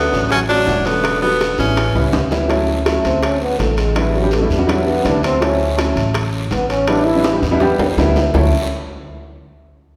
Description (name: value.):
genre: Afro-Cuban jazz.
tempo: 164 BPM.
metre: 4/4.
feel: straight.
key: D major.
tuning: A4 = 440 Hz.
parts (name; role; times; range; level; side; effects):
edgy tenor saxophone; melody; 0.0-2.1 s; B3 to D4; -20 LUFS; equal; none.
breathy trombone; second line; 0.0-7.4 s; D3 to E4; -23 LUFS; equal; none.
warm baby grand piano; accompaniment; 0.0-8.5 s; F#3 to G4; -21 LUFS; equal; none.
upright bass; bass; 0.0-8.5 s; E1 to E2; -22 LUFS; equal; none.
bongos; percussion; 0.1-8.4 s; none; -29 LUFS; equal; none.
guiro; percussion; 0.1-8.4 s; none; -34 LUFS; equal; none.
timbales; percussion; 0.3-8.4 s; none; -28 LUFS; equal; none.
room: wet scoring stage reverb, RT60 2.0 s.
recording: recorded in a church or concert hall.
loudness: -16 LUFS.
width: mono.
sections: 0.0-2.5 A section; 2.5-8.3 B section; 8.3-9.8 C section.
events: drum fill 1.9-2.5, 7.2-8.3; trombone solo 2.5-8.3.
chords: 0.0 Dmaj7; 1.0 Em7; 1.8 A7; 2.5 Dmaj7; 4.0 A7sus4; 5.4 Dmaj7; 6.9 A7sus4; 8.3 Dmaj7.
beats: 0.31 0.67 | 1.04 1.40 1.77 2.13 | 2.50 2.86 3.23 3.59 | 3.96 4.32 4.69 5.05 | 5.42 5.78 6.15 6.51 | 6.88 7.24 7.61 7.97 | 8.34.